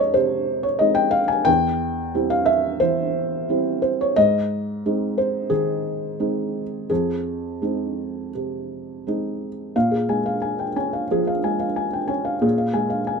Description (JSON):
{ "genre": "neoclassical minimalist piano", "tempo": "83-92 BPM", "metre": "4/4", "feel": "rubato", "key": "F minor", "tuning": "A4 = 440 Hz", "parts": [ { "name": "felt-muted upright piano", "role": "solo", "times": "0.0-13.2 s", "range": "E2 to Ab5", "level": "-20 LUFS", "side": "equal", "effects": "none" } ], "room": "moderate small room reverb, RT60 0.5 s", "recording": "minimal, uncompressed stereo recording", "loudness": "-20 LUFS", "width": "side -5 dB against mid", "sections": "0.0-9.7 A section; 9.7-13.2 B section", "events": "none", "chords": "0.0 Fm7; 1.5 C/E; 4.2 Ab; 6.9 Fm7; 9.7 Bbm7", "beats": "0.14 0.80 | 1.47 2.14 2.81 3.48 | 4.16 4.83 5.50 6.19 | 6.90 7.61 8.34 9.04 | 9.75 10.43 11.09 11.77 | 12.44 13.09" }